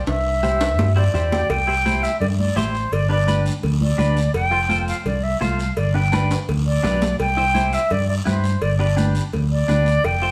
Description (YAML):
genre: latin, cumbia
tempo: 168 BPM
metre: 4/4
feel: straight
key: C major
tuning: A4 = 439 Hz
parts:
  - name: silver concert flute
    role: melody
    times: 0.0-10.3 s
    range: C5 to G5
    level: -24 LUFS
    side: equal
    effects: none
  - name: fingered electric bass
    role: bass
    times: 0.1-10.3 s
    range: F1 to G2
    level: -23 LUFS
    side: equal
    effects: none
  - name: guiro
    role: percussion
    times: 0.1-10.3 s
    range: none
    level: -39 LUFS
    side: equal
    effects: none
  - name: timbales and cowbell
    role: percussion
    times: 0.1-10.2 s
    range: none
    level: -30 LUFS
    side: equal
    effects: none
  - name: semi-hollow electric guitar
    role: accompaniment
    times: 0.4-10.3 s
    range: D4 to G5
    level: -30 LUFS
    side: equal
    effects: phaser
  - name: congas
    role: percussion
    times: 0.4-9.9 s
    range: none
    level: -30 LUFS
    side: equal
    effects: none
room: wet studio reverb, RT60 0.9 s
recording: band playing live in one room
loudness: -20 LUFS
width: mono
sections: 0.0-1.5 A section; 1.5-10.3 B section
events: drum fill 0.1-1.5, 6.1-7.2; clean electric guitar fill 1.0-1.5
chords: 0.1 C; 2.9 G; 4.3 F; 5.8 G; 7.2 C; 8.6 G